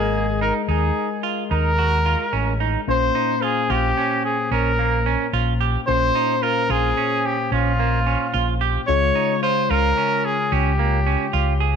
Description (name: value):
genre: progressive instrumental, progressive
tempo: 220 BPM (eighths)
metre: 11/8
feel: straight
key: Bb dorian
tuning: A4 = 441 Hz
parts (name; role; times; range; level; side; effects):
- clear trumpet; melody; 0.0-11.6 s; F4 to Db5; -22 LUFS; right 1 dB; tape echo
- barky tine electric piano; accompaniment; 0.0-11.8 s; Bb2 to Eb5; -26 LUFS; left 12 dB; none
- semi-hollow electric guitar; arpeggios; 0.0-11.8 s; Bb3 to Ab4; -25 LUFS; right 11 dB; tape echo
- fingered electric bass; bass; 0.0-11.8 s; Ab1 to Eb2; -22 LUFS; equal; none
room: moderate echo chamber reverb, RT60 1.3 s, digital ambience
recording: 1960s-style stereo with parts hard left and right, tape saturation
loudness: -18 LUFS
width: side -7 dB against mid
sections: 0.0-2.9 A section; 2.9-11.8 B section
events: none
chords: 0.0 Absus2; 2.9 Bbmadd9; 8.9 Db